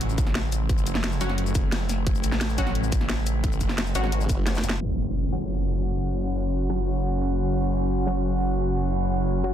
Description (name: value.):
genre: dark technical drum and bass.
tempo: 175 BPM.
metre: 4/4.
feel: straight.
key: F# harmonic minor.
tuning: A4 = 439 Hz.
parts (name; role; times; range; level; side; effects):
metallic inharmonic drone; sustained chords; 0.0-9.5 s; C#3 to C#4; -30 LUFS; right 1 dB; chorus, built-in reverb, sidechain pumping.
snarling distorted saw bass; bass; 0.0-9.5 s; F#1 to A1; -26 LUFS; equal; distortion, tube saturation.
drum and bass drum kit; drums; 0.0-4.8 s; hi-hat, shaker, snare drum; -30 LUFS; equal; overdrive.
electronic kick drum; drums; 0.2-4.4 s; none; -26 LUFS; equal; overdrive.
orchestra-hit-like synth stab; stabs; 1.2-9.5 s; F#3 to F#4; -32 LUFS; left 1 dB; built-in reverb, ping-pong delay.
formant-sweep wobble bass; bass; 4.0-4.6 s; F#1 to G#1; -25 LUFS; equal; chorus, tube saturation.
impact; sound effects; 4.8-6.2 s; none; -31 LUFS; equal; none.
airy breathy pad; texture; 4.8-9.5 s; C#4 to F#5; -30 LUFS; equal; chorus, sidechain pumping.
room: light reverb.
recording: dense, heavily limited modern master, low-pass filter.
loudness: -22 LUFS.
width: side -10 dB against mid.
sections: 0.0-4.8 A section; 4.8-9.5 B section.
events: drum fill 4.5-4.8; impact 4.8-6.2; filter sweep on synth stab 4.8-9.5; filter sweep 4.8-9.5.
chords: 0.0 F#5.